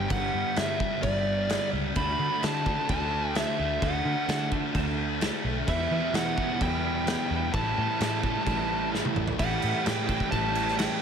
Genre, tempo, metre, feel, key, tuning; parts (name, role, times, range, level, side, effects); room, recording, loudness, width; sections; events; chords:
rock, shoegaze and dream pop; 129 BPM; 4/4; straight; A mixolydian; A4 = 440 Hz
fuzz lead guitar; melody; 0.0-11.0 s; D5 to B5; -31 LUFS; left 1 dB; distortion, analog delay
overdriven electric guitar; riff; 0.0-11.0 s; E2 to G4; -33 LUFS; right 12 dB; reverse reverb
thick fuzz guitar; riff; 0.0-11.0 s; E2 to D4; -33 LUFS; left 12 dB; distortion, wide subtle chorus
vintage muted picked electric bass; bass; 0.0-10.9 s; G1 to E3; -33 LUFS; equal
loose indie drum kit; drums; 0.1-10.9 s; crash cymbal, kick drum, snare drum, toms; -30 LUFS; right 1 dB
twelve-string electric guitar; arpeggios; 2.0-11.0 s; E3 to D4; -38 LUFS; right 11 dB; ensemble chorus, analog delay
light reverb, small room ambience; -25 LUFS; side -7 dB against mid
0.0-9.4 A section; 9.4-11.0 B section
drum fill 8.9-9.4
0.0 G6; 2.0 D; 5.7 Em7; 7.5 A7